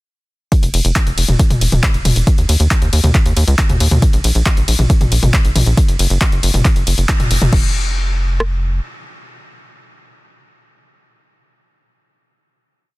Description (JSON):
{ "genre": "uplifting trance", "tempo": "137 BPM", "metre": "4/4", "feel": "straight", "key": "F minor", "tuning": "A4 = 440 Hz", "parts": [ { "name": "punchy analog drum machine", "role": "drums", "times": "0.5-8.5 s", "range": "kick drum, rim click", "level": "-14 LUFS", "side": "equal", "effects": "overdrive" }, { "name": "punchy analog drum machine", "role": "drums", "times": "0.5-7.6 s", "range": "crash cymbal, handclaps, hi-hat, ride cymbal, toms", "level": "-18 LUFS", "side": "left 1 dB", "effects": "overdrive" }, { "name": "tight sequencer bass", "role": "bass", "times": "0.6-8.8 s", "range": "Eb1 to Eb2", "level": "-15 LUFS", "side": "equal", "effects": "sidechain pumping" } ], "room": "digital ambience", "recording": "dense, heavily limited modern master", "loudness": "-12 LUFS", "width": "side -21 dB against mid", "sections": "0.5-7.5 drop; 7.5-11.0 final chord", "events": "drop 0.5-7.5; band accent 7.1", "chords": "none" }